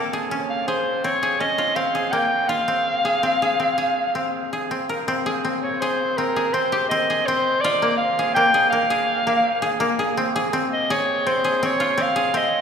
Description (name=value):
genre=contemporary instrumental, contemporary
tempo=165 BPM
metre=7/4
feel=straight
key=unclear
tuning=A4 = 441 Hz
part: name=koto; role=arpeggios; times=0.0-12.6 s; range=Bb3 to Bb4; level=-23 LUFS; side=equal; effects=none
part: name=warm soprano saxophone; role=melody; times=0.5-12.6 s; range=Bb4 to G5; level=-21 LUFS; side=equal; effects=none
room=wet cathedral reverb, RT60 6.5 s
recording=recorded in a church or concert hall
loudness=-19 LUFS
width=side -7 dB against mid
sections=0.0-5.1 A section; 5.1-12.6 B section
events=none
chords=0.0 Bbm7; 2.5 Fm; 5.1 Abmaj7; 7.6 Bb7(no3)